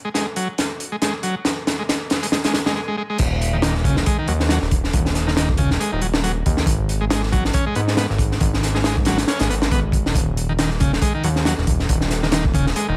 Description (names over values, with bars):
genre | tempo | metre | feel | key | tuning
breakbeat, breaks | 138 BPM | 4/4 | swing 56% on 16ths | Eb minor | A4 = 441 Hz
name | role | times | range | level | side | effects
combo organ | riff | 0.0-13.0 s | Db3 to Db4 | -27 LUFS | equal | overdrive, vintage 12-bit sampler grit, tape echo
crunchy breakbeat drum kit | drums | 0.1-12.9 s | crash cymbal, hi-hat, kick drum, snare drum | -22 LUFS | equal | none
fat analog bass | bass | 3.2-13.0 s | Eb1 to Ab2 | -24 LUFS | equal | none
room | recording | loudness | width
small room ambience | vinyl crackle | -20 LUFS | mono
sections
0.0-3.2 A section; 3.2-13.0 B section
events
build-up 0.0-3.2; drum fill 0.0-2.8; break 2.8-3.2; drop 3.2-13.0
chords
0.0 Gbsus2; 3.2 Ebm7; 6.7 Abm7; 10.1 Eb7(no3)